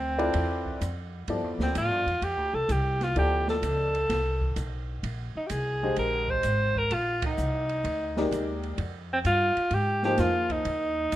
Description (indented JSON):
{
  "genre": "modal jazz",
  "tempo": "128 BPM",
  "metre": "4/4",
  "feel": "swing 68% on 8ths",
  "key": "unclear",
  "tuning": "A4 = 440 Hz",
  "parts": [
    { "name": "breathy alto saxophone", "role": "melody", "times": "0.0-11.2 s", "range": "C4 to C5", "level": "-27 LUFS", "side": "equal", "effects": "none" },
    { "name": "upright bass", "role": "bass", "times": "0.0-11.2 s", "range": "Ab1 to A2", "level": "-30 LUFS", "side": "equal", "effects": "none" },
    { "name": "warm upright piano", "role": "accompaniment", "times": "0.2-10.6 s", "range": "D3 to Eb5", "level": "-30 LUFS", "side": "left 2 dB", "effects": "none" },
    { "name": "open jazz drum kit", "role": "drums", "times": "0.2-11.2 s", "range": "hi-hat, kick drum, ride cymbal, snare drum", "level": "-37 LUFS", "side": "right 2 dB", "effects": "none" }
  ],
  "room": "light reverb",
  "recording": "minimal, uncompressed stereo recording",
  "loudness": "-25 LUFS",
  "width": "side -14 dB against mid",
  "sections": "0.0-11.2 A section",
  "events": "band accent 7.1",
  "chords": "0.0 G9sus4 (rootless); 5.0 Bb9sus4",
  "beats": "0.34 0.81 | 1.28 1.75 2.22 2.69 | 3.16 3.63 4.09 4.56 | 5.03 5.50 5.97 6.44 | 6.91 7.38 7.84 8.31 | 8.78 9.25 9.72 10.19 | 10.65 11.12"
}